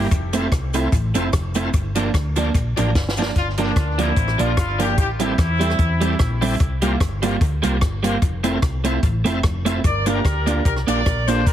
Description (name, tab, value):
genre	ska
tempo	148 BPM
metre	4/4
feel	swing 54% on 8ths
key	G dorian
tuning	A4 = 442 Hz
part	clean electric guitar	accompaniment	0.0-11.4 s	F3 to F4	-23 LUFS	right 4 dB	analog chorus, tape echo
part	bright tonewheel organ	stabs	0.0-11.4 s	C4 to Bb4	-29 LUFS	left 3 dB	fast rotary speaker, tape echo
part	hollow-body short-scale fingered electric bass	bass	0.0-11.5 s	F1 to E2	-23 LUFS	equal	none
part	compact cocktail drum kit	drums	0.1-11.5 s	hi-hat, kick drum, rim click, snare drum	-22 LUFS	equal	none
part	cabasa	percussion	0.1-3.3, 9.8-11.5 s	none	-38 LUFS	left 9 dB	none
part	warm horn section	melody	3.4-6.4, 9.8-11.5 s	Bb3 to D5	-25 LUFS	left 2 dB	tape echo
room	light reverb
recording	heavily compressed radio sound, multiband compression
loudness	-17 LUFS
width	side -11 dB against mid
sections	0.0-3.4 A section; 3.4-11.5 A section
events	drum fill 3.0-3.4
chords	0.1 Fmaj7; 1.7 Gm7; 5.0 Am7; 6.6 C7sus4; 8.2 Fmaj7; 9.8 Gm7